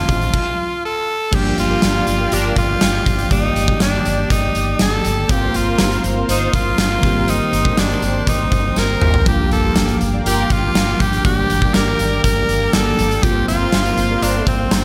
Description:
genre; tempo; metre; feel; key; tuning
1980s-style pop; 121 BPM; 4/4; straight; G minor; A4 = 440 Hz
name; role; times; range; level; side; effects
raspy tenor saxophone; melody; 0.0-14.8 s; C4 to Bb4; -22 LUFS; equal; none
bell-like tine electric piano; accompaniment; 0.0-14.8 s; Eb3 to D5; -26 LUFS; equal; none
brassy analog pad; sustained chords; 0.0-14.8 s; Bb3 to D6; -29 LUFS; equal; chorus
woody fretless electric bass; bass; 0.0-14.8 s; G1 to A1; -24 LUFS; equal; none
huge arena drum kit; drums; 0.1-14.8 s; crash cymbal, hi-hat, kick drum, snare drum, tambourine, toms; -21 LUFS; equal; none
tambourine; percussion; 0.1-14.8 s; none; -38 LUFS; equal; none
mellow synth brass; stabs; 1.3-14.4 s; Bb3 to D5; -29 LUFS; equal; chorus, phaser, tape echo
room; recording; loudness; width
moderate lush hall reverb, RT60 1.8 s; big arena sound; -17 LUFS; mono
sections
0.0-1.3 A section; 1.3-14.8 B section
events
stop 0.3-1.3; drum fill 8.8-9.3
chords
0.0 F7; 1.3 Gm7; 3.3 Ebmaj7/G; 5.3 Fsus4/G; 7.0 Cm7/G; 9.3 Gm7; 11.2 Ebmaj7/G; 13.2 Fsus4/G

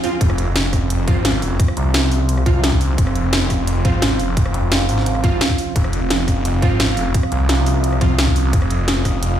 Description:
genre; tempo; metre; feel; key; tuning
dark technical drum and bass; 173 BPM; 4/4; straight; F minor; A4 = 440 Hz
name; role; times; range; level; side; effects
deep dark ambient pad; sustained chords; 0.0-9.4 s; C4 to Eb6; -24 LUFS; right 1 dB; chorus, built-in reverb, sidechain pumping
orchestra-hit-like synth stab; stabs; 0.0-9.4 s; F3 to F4; -26 LUFS; right 3 dB; built-in reverb, dub echo
drum and bass drum kit; drums; 0.0-9.3 s; hi-hat, rim click, snare drum; -21 LUFS; equal; overdrive, studio reverb
snarling distorted saw bass; bass; 0.2-9.4 s; F1 to C2; -18 LUFS; equal; distortion, sidechain pumping
electronic kick drum; drums; 0.2-9.1 s; none; -17 LUFS; equal; overdrive, studio reverb
room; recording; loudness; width
light reverb; played on a big sound system in a bare room, large studio reverb; -15 LUFS; side -10 dB against mid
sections
0.2-9.4 A section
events
break 0.0; drop 0.2-9.4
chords
0.2 F5

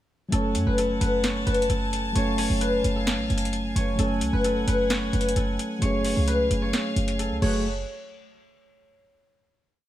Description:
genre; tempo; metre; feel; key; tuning
hip hop, trap; 131 BPM; 4/4; half-time; F# harmonic minor; A4 = 440 Hz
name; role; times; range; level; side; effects
guzheng; melody; 0.3-7.6 s; A4 to C#5; -28 LUFS; left 1 dB; low-pass filter
mellow tine electric piano; accompaniment; 0.3-7.7 s; F#3 to C#5; -28 LUFS; equal; low-pass filter
warm studio string section; sustained chords; 0.3-7.6 s; A3 to A5; -34 LUFS; left 2 dB; none
short 808-style bass; bass; 0.3-7.8 s; F#1 to F#2; -26 LUFS; equal; none
trap drum kit; drums; 0.3-7.5 s; crash cymbal, hi-hat, snare drum; -30 LUFS; equal; none
room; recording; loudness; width
light reverb; none; -22 LUFS; side -13 dB against mid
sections
0.3-7.7 hook; 7.7-9.5 final hit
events
none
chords
0.3 F#madd9; 7.7 N.C.

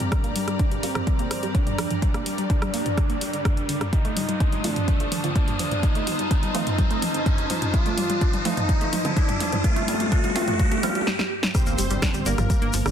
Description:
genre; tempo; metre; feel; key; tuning
melodic techno; 126 BPM; 4/4; straight; G minor; A4 = 440 Hz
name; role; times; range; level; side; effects
expressive portamento lead; melody; 0.0-12.9 s; A3 to F4; -30 LUFS; right 1 dB; lush chorus, sidechain pumping, tape echo
analog pluck; arpeggios; 0.0-12.9 s; D3 to D5; -31 LUFS; right 1 dB; chorus, sidechain pumping, dub echo
filtered dub chord stab; stabs; 0.0-1.6, 4.6-12.9 s; F3 to G4; -32 LUFS; right 2 dB; phaser, wide subtle chorus, sidechain pumping, dub echo
swelling detuned saw bass; bass; 0.0-12.9 s; F1 to G1; -34 LUFS; equal; none
swarming drone; drone; 0.0-11.1 s; G2 to G3; -38 LUFS; left 1 dB; none
punchy analog drum machine; drums; 0.0-12.9 s; hi-hat, rim click, snare drum, toms; -28 LUFS; equal; soft clipping on snare
riser and impact; sound effects; 0.0-12.9 s; none; -31 LUFS; equal; none
rich studio string section; texture; 0.0-11.1 s; F4 to Eb6; -34 LUFS; left 2 dB; sidechain pumping
electronic kick drum; drums; 0.1-12.6 s; none; -23 LUFS; equal; overdrive
big bright polysynth; second line; 11.5-12.9 s; Bb4 to C5; -33 LUFS; equal; chorus, tremolo, sidechain pumping, dub echo
tube shaker; percussion; 11.5-12.9 s; none; -34 LUFS; left 5 dB; none
room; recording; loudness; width
light reverb, digital ambience; dense, heavily limited modern master; -21 LUFS; side -9 dB against mid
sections
0.0-11.5 A section; 11.5-12.9 B section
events
build-up 0.0-11.5; drum fill 0.0-11.1, 11.1-11.5; riser 0.0-11.1; filter sweep on synth arpeggio sound 0.0-11.5; filter sweep on synth stab 0.0-11.5; break 11.1-11.5; drop 11.5-12.9; impact 11.5-12.9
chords
0.0 Gm; 3.9 F7; 11.5 Gm

